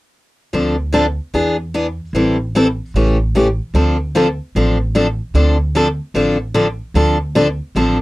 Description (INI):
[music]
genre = acoustic string swing (jazz manouche)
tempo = 150 BPM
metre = 4/4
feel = swing 62% on 8ths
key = D minor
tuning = A4 = 440 Hz
[part]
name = picked steel-string acoustic guitar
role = accompaniment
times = 0.5-8.0 s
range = C#3 to A4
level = -14 LUFS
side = left 1 dB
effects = none
[part]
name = upright bass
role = bass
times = 0.5-8.0 s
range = A1 to E2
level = -18 LUFS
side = right 1 dB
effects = none
[sound]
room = light reverb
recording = dry, close 1970s-style studio recording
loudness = -14 LUFS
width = side -18 dB against mid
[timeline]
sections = 0.5-3.7 A section; 3.7-8.0 B section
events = none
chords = 0.5 Dm7; 1.3 E7; 2.1 Am7; 2.9 A7; 3.7 Dm7